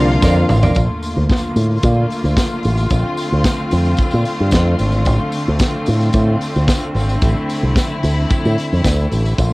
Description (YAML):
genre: disco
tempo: 111 BPM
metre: 4/4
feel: straight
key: F major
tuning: A4 = 440 Hz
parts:
  - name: clear symphonic string section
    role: second line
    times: 0.0-0.7 s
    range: F4 to F5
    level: -22 LUFS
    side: equal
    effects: none
  - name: electric guitar at the edge of break-up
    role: accompaniment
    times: 0.0-0.8 s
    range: F4 to D5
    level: -22 LUFS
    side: right 4 dB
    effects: none
  - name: tine electric piano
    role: accompaniment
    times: 0.0-0.8 s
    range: F3 to Bb4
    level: -19 LUFS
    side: left 2 dB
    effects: medium tremolo
  - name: clear studio string section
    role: sustained chords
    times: 0.0-9.5 s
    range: D3 to F4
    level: -21 LUFS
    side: left 1 dB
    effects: none
  - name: fingered electric bass with an envelope filter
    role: bass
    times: 0.0-9.5 s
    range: Ab1 to Bb2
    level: -15 LUFS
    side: equal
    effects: none
  - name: modern studio drum kit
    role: drums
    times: 0.2-9.5 s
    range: hi-hat, kick drum, snare drum, toms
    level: -18 LUFS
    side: equal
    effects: cassette tape
  - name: tambourine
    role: percussion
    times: 0.2-9.5 s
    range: none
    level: -33 LUFS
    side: left 3 dB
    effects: none
room: little or no reverb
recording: home recording on cassette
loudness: -14 LUFS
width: side -22 dB against mid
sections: 0.8-9.5 A section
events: drum fill 0.2-0.8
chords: 0.0 C9sus4; 0.8 Bbmaj7; 5.1 F6